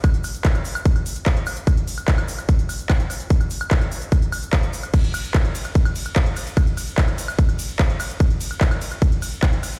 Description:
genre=trance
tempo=147 BPM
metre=4/4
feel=straight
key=none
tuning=none
part: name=electronic kick drum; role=drums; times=0.0-9.5 s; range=none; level=-20 LUFS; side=equal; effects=none
part: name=techno drum kit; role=drums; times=0.0-9.8 s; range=crash cymbal, handclaps, hi-hat, ride cymbal, woodblock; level=-30 LUFS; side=equal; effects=none
part: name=tube shaker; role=percussion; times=0.0-9.8 s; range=none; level=-41 LUFS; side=equal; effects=none
room=light reverb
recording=played on a big sound system in a bare room, stone room reverb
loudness=-21 LUFS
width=mono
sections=0.0-9.8 A section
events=none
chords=none

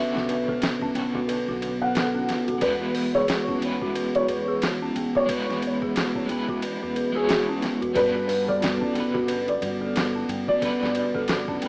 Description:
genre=trip hop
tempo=90 BPM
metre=4/4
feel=swing 59% on 16ths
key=unclear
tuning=A4 = 439 Hz
part: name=felt-muted upright piano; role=melody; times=0.0-10.9 s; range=G#4 to F#5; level=-26 LUFS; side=equal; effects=vintage 12-bit sampler grit, tape echo
part: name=electric guitar at the edge of break-up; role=accompaniment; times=0.0-11.7 s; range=D3 to C#5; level=-32 LUFS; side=equal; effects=tremolo, tape echo
part: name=warbly tape-like pad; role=sustained chords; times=0.0-11.7 s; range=B3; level=-30 LUFS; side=equal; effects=chorus, built-in reverb
part: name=dark detuned synth bell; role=arpeggios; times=0.0-11.7 s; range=B3 to B4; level=-28 LUFS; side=equal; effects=chorus, phaser, tape echo
part: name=upright bass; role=bass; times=0.1-11.7 s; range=B1 to G2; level=-36 LUFS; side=equal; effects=none
part: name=boom bap sampler-style drum kit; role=drums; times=0.2-11.7 s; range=hi-hat, kick drum, ride cymbal, snare drum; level=-30 LUFS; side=equal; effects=none
room=moderate plate reverb, RT60 1.7 s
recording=rough home demo mix, vinyl crackle, small speaker sound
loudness=-22 LUFS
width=side -33 dB against mid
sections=0.0-11.7 A section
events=none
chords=0.0 Bmadd9; 2.6 E; 8.0 G

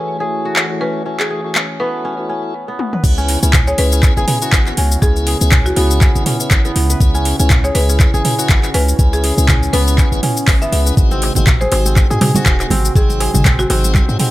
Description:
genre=afro house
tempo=121 BPM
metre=4/4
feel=swing 56% on 16ths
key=C# minor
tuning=A4 = 441 Hz
part: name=buzzing marimba with hard mallets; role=melody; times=0.0-13.8 s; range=F#4 to E5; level=-24 LUFS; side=equal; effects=tape echo
part: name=warm analog pad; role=sustained chords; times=0.0-14.3 s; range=B#2 to F#4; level=-25 LUFS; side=right 2 dB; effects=lush chorus, sidechain pumping
part: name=kora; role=arpeggios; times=0.0-14.3 s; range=B3 to B4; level=-23 LUFS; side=equal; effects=sidechain pumping, tape echo
part: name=tonewheel organ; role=stabs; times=0.0-14.3 s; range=B#3 to C#5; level=-24 LUFS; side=left 3 dB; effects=overdrive, slow rotary speaker, sidechain pumping, low-pass filter, tape echo
part: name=deep house drum kit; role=drums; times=0.6-14.3 s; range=crash cymbal, handclaps, hi-hat, shaker, toms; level=-18 LUFS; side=equal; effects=overdrive
part: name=warm 808-style bass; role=bass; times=3.0-14.2 s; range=D#1 to G#2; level=-16 LUFS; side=equal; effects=tube saturation, sidechain pumping
part: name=electronic kick drum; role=drums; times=3.0-14.1 s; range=none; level=-12 LUFS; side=equal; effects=none
part: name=congas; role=percussion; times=11.1-14.3 s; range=none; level=-20 LUFS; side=right 3 dB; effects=none
part: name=darbuka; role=percussion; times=11.2-13.8 s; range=none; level=-22 LUFS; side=left 1 dB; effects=none
room=little or no reverb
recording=none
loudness=-12 LUFS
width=side -16 dB against mid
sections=0.0-3.0 A section; 3.0-14.3 B section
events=drum fill 2.8; drop 3.0-14.3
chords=0.0 F#m7; 3.0 C#m7; 11.0 G#7

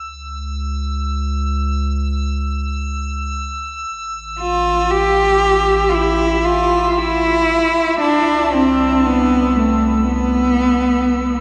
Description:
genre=ambient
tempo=free time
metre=none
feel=none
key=A minor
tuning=A4 = 443 Hz
part: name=round analog bass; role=bass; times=0.0-11.4 s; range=A1 to C#2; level=-25 LUFS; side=equal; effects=none
part: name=drifting glass-harmonics texture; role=texture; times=0.0-11.4 s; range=E6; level=-29 LUFS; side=equal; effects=chorus, built-in reverb
part: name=rich cello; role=melody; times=4.4-11.4 s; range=A3 to G4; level=-16 LUFS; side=equal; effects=tape echo
room=wet cathedral reverb, RT60 6.3 s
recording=dreamy mix soaked in reverb, nothing above 10.5 kHz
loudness=-17 LUFS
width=mono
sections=0.0-11.4 A section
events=fade-in on synth texture 0.0-11.4; fade-out on analog synth bass 0.0-11.4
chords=0.0 C#m; 3.9 A5; 8.0 Cmaj7

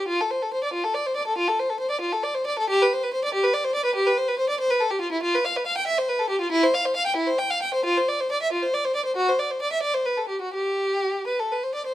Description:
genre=classical, baroque-style suite movement for unaccompanied violin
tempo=92 BPM (dotted quarters)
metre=12/8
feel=uneven beats, rubato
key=unclear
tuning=A4 = 440 Hz
part: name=warm violin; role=solo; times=0.0-11.9 s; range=E4 to G5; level=-22 LUFS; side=equal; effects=none
room=light reverb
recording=minimal, uncompressed stereo recording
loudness=-22 LUFS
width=side -14 dB against mid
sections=0.0-11.9 A section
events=none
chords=none

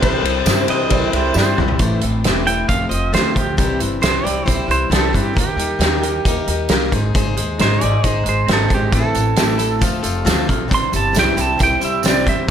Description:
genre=folk rock and heartland rock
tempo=135 BPM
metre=4/4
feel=straight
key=C major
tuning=A4 = 443 Hz
part: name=electric slide guitar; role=melody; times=0.0-1.5 s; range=C5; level=-23 LUFS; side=left 3 dB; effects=none
part: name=dark upright piano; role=accompaniment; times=0.0-1.7 s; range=E4 to D5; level=-27 LUFS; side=right 6 dB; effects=none
part: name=picked plugged-in swing-style acoustic guitar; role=accompaniment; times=0.0-12.5 s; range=A2 to C5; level=-23 LUFS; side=left 6 dB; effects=none
part: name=electric guitar through a small old amp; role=riff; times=0.0-12.5 s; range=F2 to A4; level=-24 LUFS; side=right 2 dB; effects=wide subtle chorus
part: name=upright bass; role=bass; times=0.0-12.5 s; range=E1 to G2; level=-22 LUFS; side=equal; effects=none
part: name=loose indie drum kit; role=drums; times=0.0-12.5 s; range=hi-hat, kick drum, ride cymbal, snare drum, toms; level=-19 LUFS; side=equal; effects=none
part: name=tambourine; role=percussion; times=0.5-1.5, 9.1-12.1 s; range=none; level=-31 LUFS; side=right 8 dB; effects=none
part: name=pedal steel guitar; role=second line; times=0.7-12.5 s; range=G4 to C6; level=-20 LUFS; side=right 4 dB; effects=none
room=light reverb, studio reverb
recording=none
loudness=-14 LUFS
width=side -9 dB against mid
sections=0.0-1.8 A section; 1.8-12.5 B section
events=drum fill 1.4-1.8; pedal steel guitar solo 1.8-12.5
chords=0.0 C; 1.8 Am; 2.7 F; 3.6 C; 5.4 Eb; 6.9 Ab; 8.9 Am; 9.8 F; 10.7 C

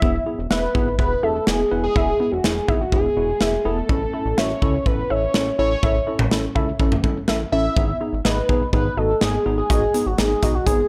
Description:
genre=synth-pop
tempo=124 BPM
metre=4/4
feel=straight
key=E major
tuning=A4 = 440 Hz
part: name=fat analog lead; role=melody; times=0.0-10.9 s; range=F#4 to E5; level=-25 LUFS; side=equal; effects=analog delay
part: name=tine electric piano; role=accompaniment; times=0.0-10.8 s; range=B3 to B4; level=-30 LUFS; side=equal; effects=none
part: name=warbly dusty pluck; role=arpeggios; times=0.0-10.8 s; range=B3 to E5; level=-30 LUFS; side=equal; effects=chorus, analog delay
part: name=chorused synth bass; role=bass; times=0.0-10.8 s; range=E1 to C#2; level=-29 LUFS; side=equal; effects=none
part: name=modern studio drum kit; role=drums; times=0.0-10.8 s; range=hi-hat, kick drum, snare drum, toms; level=-24 LUFS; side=equal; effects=none
room=little or no reverb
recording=none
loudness=-20 LUFS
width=mono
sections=0.0-10.9 A section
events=none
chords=0.0 E; 3.9 A; 7.8 G#m

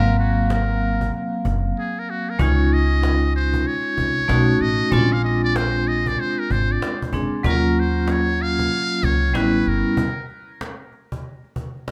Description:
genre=hip hop, jazz-hop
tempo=95 BPM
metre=4/4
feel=swing 63% on 16ths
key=Eb dorian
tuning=A4 = 440 Hz
part: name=trumpet with metal mute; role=melody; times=0.0-10.3 s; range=Gb4 to F5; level=-27 LUFS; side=equal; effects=tape echo
part: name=vibraphone with hard mallets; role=accompaniment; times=0.0-10.0 s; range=Gb3 to F5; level=-24 LUFS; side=equal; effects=plate reverb
part: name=upright bass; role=bass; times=0.0-9.8 s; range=Gb1 to Eb2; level=-23 LUFS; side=equal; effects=none
part: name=cajon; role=drums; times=0.2-11.9 s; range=none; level=-31 LUFS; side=equal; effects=none
room=light reverb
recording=rough home demo mix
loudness=-20 LUFS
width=mono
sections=0.0-11.9 A section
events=muted trumpet solo 0.0-11.9; break 1.8-2.4, 10.0-11.9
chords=0.0 Ab13; 2.4 Dbmaj9; 4.3 B9; 4.9 Bb9; 7.4 Ebm9; 9.3 A9; 10.0 N.C.

